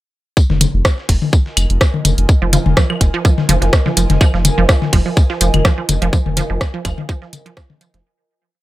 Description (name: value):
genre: minimal techno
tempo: 125 BPM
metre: 4/4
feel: swing 54% on 16ths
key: F minor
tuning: A4 = 440 Hz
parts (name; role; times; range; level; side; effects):
- dusty soul sampler-style drum kit; drums; 0.4-8.0 s; hi-hat, snare drum, tambourine; -29 LUFS; left 2 dB; sidechain pumping on perc, high-pass filter on perc, high-pass filter on snare, sidechain pumping on hats, high-pass filter on hats, high-pass filter on room
- electronic kick drum; drums; 0.4-7.7 s; none; -13 LUFS; equal; overdrive
- airy breathy pad; texture; 0.4-8.0 s; F4 to Ab5; -26 LUFS; right 1 dB; chorus, sidechain pumping
- saturated sub bass; bass; 0.5-8.0 s; F1; -16 LUFS; equal; sidechain pumping
- electronic toms and claves; percussion; 0.5-7.8 s; none; -19 LUFS; left 4 dB; none
- garage drum kit; drums; 0.6-8.0 s; hi-hat, rim click; -17 LUFS; right 1 dB; overdrive
- resonant blip pluck; riff; 2.4-8.0 s; F3; -21 LUFS; right 6 dB; chorus, sidechain pumping, dub echo
room: light reverb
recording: none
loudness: -12 LUFS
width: side -16 dB against mid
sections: 0.4-8.0 groove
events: fade-in on analog synth pad 0.4-8.0; fade-out 5.5-8.0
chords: 0.4 Fsus4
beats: | 0.37 0.85 1.33 1.81 | 2.29 2.77 3.25 3.73 | 4.21 4.69 5.17 5.65 | 6.13 6.61 7.09 7.57